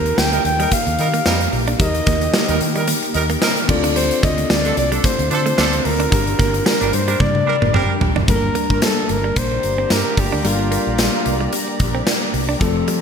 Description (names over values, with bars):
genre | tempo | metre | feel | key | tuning
1980s-style pop | 111 BPM | 4/4 | swing 55% on 16ths | G minor | A4 = 440 Hz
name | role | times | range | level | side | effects
warm flugelhorn | melody | 0.0-11.5 s | F4 to G5 | -22 LUFS | equal | digital delay
bell-like tine electric piano | accompaniment | 0.0-13.0 s | F3 to D5 | -24 LUFS | left 5 dB | none
shimmering ambient pad | sustained chords | 0.0-13.0 s | D3 to C6 | -28 LUFS | right 1 dB | chorus, built-in reverb
fingered electric bass | bass | 0.0-12.8 s | F1 to Eb3 | -22 LUFS | equal | none
direct-recorded clean electric guitar | riff | 0.1-13.0 s | F3 to D4 | -27 LUFS | right 6 dB | lush chorus, digital delay
big rock drum kit | drums | 0.1-13.0 s | crash cymbal, hi-hat, kick drum, snare drum, tambourine, toms | -19 LUFS | equal | gated reverb
clear horn section | stabs | 0.3-13.0 s | D3 to Bb4 | -26 LUFS | right 5 dB | digital delay
room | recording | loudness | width
moderate lush hall reverb, RT60 1.7 s, small room ambience | bright 1980s-style digital production | -15 LUFS | side -6 dB against mid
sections
0.0-8.3 A section; 8.3-13.0 B section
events
drum fill 7.2-8.3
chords
0.0 Eb; 3.7 Dm7; 6.1 Gm